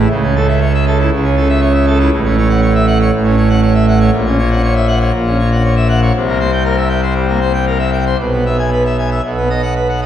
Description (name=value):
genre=classical, organ toccata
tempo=119 BPM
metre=4/4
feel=straight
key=unclear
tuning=A4 = 440 Hz
part: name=pipe organ, full organ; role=solo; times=0.0-10.1 s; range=A1 to G#5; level=-11 LUFS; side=equal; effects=none
room=wet recital hall reverb, RT60 1.3 s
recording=dark, warm production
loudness=-11 LUFS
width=side -10 dB against mid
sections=0.0-10.1 A section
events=none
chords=0.1 A/C#; 2.1 F#m7/A; 4.1 F#7/A#; 6.1 C7; 8.2 E/B; 9.2 B